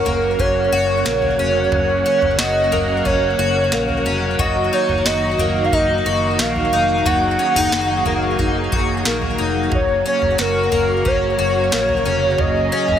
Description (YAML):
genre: dream pop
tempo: 90 BPM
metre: 4/4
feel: straight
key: unclear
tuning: A4 = 440 Hz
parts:
  - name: warbly nostalgic lead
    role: melody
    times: 0.0-13.0 s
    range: Bb4 to Gb5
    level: -19 LUFS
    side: right 1 dB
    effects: chorus, digital delay
  - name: string machine, violins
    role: sustained chords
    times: 0.0-13.0 s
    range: Db3 to Ab4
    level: -23 LUFS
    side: right 1 dB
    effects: ensemble chorus
  - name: picked twelve-string acoustic guitar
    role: arpeggios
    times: 0.0-13.0 s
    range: Gb3 to Gb4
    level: -21 LUFS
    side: left 3 dB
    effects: analog chorus, digital delay
  - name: vintage muted fingered electric bass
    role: bass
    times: 0.1-13.0 s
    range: F1 to Bb1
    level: -25 LUFS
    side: equal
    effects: none
  - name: booming analog drum machine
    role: drums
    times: 0.1-13.0 s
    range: kick drum, snare drum, toms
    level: -24 LUFS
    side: right 1 dB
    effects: none
room: light reverb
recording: none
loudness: -15 LUFS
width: side -9 dB against mid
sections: 0.0-13.0 A section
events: none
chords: 0.0 Gb; 4.4 Ebm; 9.7 Gb